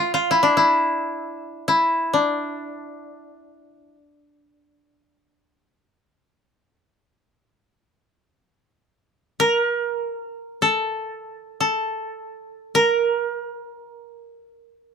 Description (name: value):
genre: japanese traditional, Japanese chamber music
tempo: free time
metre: none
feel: none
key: D hirajoshi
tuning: A4 = 440 Hz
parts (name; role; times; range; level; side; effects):
- koto; solo; 0.0-14.9 s; D4 to Bb4; -20 LUFS; equal; none
room: light reverb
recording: close, detailed microphones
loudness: -19 LUFS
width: side -6 dB against mid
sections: 0.0-14.9 A section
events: none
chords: none